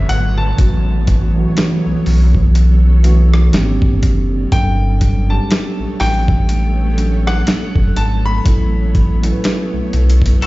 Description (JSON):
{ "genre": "contemporary R&B", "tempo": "61 BPM", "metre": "4/4", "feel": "swing 58% on 16ths", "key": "A mixolydian", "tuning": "A4 = 440 Hz", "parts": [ { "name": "clear concert grand piano", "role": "melody", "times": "0.0-9.2 s", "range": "F#5 to B5", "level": "-24 LUFS", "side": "left 2 dB", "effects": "tape echo" }, { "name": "mellow tine electric piano", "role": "accompaniment", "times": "0.0-10.5 s", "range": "D3 to B5", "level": "-20 LUFS", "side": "right 2 dB", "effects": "fast stereo tremolo" }, { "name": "granular cloud pad", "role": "sustained chords", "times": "0.0-10.5 s", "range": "F#3 to C#5", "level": "-26 LUFS", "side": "left 2 dB", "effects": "built-in reverb, sidechain pumping" }, { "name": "sub bass with octave", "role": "bass", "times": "0.0-10.4 s", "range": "F#1 to B1", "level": "-13 LUFS", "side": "equal", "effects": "none" }, { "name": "downlifter", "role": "sound effects", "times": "0.0-4.5 s", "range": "none", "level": "-35 LUFS", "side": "equal", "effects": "none" }, { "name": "dusty soul sampler-style drum kit", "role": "drums", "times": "0.1-10.5 s", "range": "hi-hat, kick drum, rim click, snare drum", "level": "-16 LUFS", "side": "equal", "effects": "none" }, { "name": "clean electric guitar", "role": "arpeggios", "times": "10.4-10.5 s", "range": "F#4 to A4", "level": "-18 LUFS", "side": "left 5 dB", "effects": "ensemble chorus" } ], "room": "little or no reverb", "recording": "played on a big sound system in a bare room, large studio reverb, nothing above 7.6 kHz", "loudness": "-12 LUFS", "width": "side -19 dB against mid", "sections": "0.0-10.5 A section", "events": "none", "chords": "0.0 Gmaj9#11 (rootless); 0.6 A69; 3.5 G#maj9#11; 4.5 Gmaj9#11; 8.5 A69" }